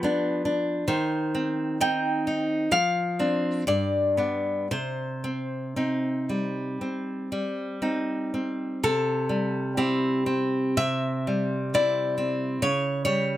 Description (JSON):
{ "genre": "romantic piece for solo classical guitar", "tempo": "55-72 BPM", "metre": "4/4", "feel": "rubato", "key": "C minor, C major from 8.8 s", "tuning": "A4 = 442 Hz", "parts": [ { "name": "nylon-string guitar", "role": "solo", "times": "0.0-13.4 s", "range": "G2 to G5", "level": "-24 LUFS", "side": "equal", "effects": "none" } ], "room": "moderate booth ambience, RT60 0.2 s", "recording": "none", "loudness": "-24 LUFS", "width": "side -13 dB against mid", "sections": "0.0-8.8 A section; 8.8-13.4 B section", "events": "none", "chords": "0.0 G7/F; 0.9 Cm/Eb; 2.7 Dm7/F; 3.7 G; 4.7 Cm; 8.8 C; 12.6 A7/C# (rootless)" }